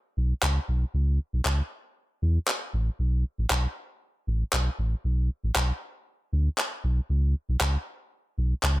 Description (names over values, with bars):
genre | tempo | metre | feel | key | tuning
dance-pop | 117 BPM | 4/4 | straight | B minor | A4 = 440 Hz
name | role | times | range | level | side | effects
sub bass with octave | bass | 0.2-8.8 s | A1 to E2 | -24 LUFS | equal | none
electronic handclaps | drums | 0.4-8.8 s | none | -28 LUFS | equal | none
room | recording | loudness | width
digital ambience | none | -25 LUFS | side -17 dB against mid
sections
0.0-8.8 A section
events
none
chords
none